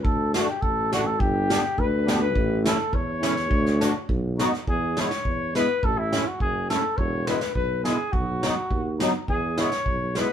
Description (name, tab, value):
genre	alpine folk, alpine dance band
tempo	104 BPM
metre	2/4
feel	straight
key	D major, E major from 4.7 s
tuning	A4 = 440 Hz
part	mellow trumpet	melody	0.0-10.3 s	E4 to C#5	-26 LUFS	left 2 dB	none
part	warm tuba	bass	0.0-10.2 s	E1 to E2	-27 LUFS	right 1 dB	none
part	soft brush drum kit	drums	0.0-10.3 s	hi-hat, kick drum, snare drum	-27 LUFS	right 1 dB	none
part	musette accordion	accompaniment	0.3-10.3 s	F#3 to G4	-27 LUFS	left 1 dB	none
room	light reverb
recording	band playing live in one room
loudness	-22 LUFS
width	side -9 dB against mid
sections	0.0-4.7 A section; 4.7-10.3 B section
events	none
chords	0.0 D; 1.2 G; 2.4 A; 3.5 D; 4.1 B; 4.7 E; 5.8 A; 7.0 E; 8.1 B; 9.3 E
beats	| 0.04 0.62 | 1.20 1.78 | 2.35 2.93 | 3.51 4.09 | 4.67 5.25 | 5.83 6.40 | 6.98 7.55 | 8.13 8.71 | 9.28 9.86